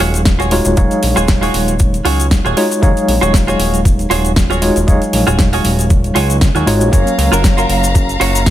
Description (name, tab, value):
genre	nu-disco, nu disco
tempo	117 BPM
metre	4/4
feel	swing 55% on 16ths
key	Eb minor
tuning	A4 = 439 Hz
part	mellow tine electric piano	accompaniment	0.0-8.5 s	Gb3 to F5	-16 LUFS	equal	medium tremolo, sidechain pumping, low-pass filter, ping-pong delay
part	direct-recorded clean electric guitar	riff	0.0-8.4 s	F4 to Db5	-18 LUFS	right 2 dB	wide subtle chorus, ping-pong delay
part	fat analog bass	bass	0.0-8.5 s	Eb1 to Eb2	-16 LUFS	equal	none
part	pop drum kit	drums	0.0-8.5 s	hi-hat, shaker, snare drum	-20 LUFS	equal	overdrive
part	egg shaker	percussion	0.2-8.5 s	none	-26 LUFS	left 4 dB	none
part	electronic kick drum	drums	0.3-8.5 s	none	-12 LUFS	equal	none
part	rich studio violin section	sustained chords	6.9-8.5 s	F5 to Bb5	-20 LUFS	left 2 dB	sidechain pumping
room	little or no reverb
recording	none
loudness	-10 LUFS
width	side -13 dB against mid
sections	0.0-8.5 A section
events	none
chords	0.0 Ebm11; 6.9 Gbmaj7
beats	0.26 | 0.78 1.29 1.80 2.31 | 2.83 3.34 3.85 4.37 | 4.88 5.39 5.90 6.42 | 6.93 7.44 7.96 8.47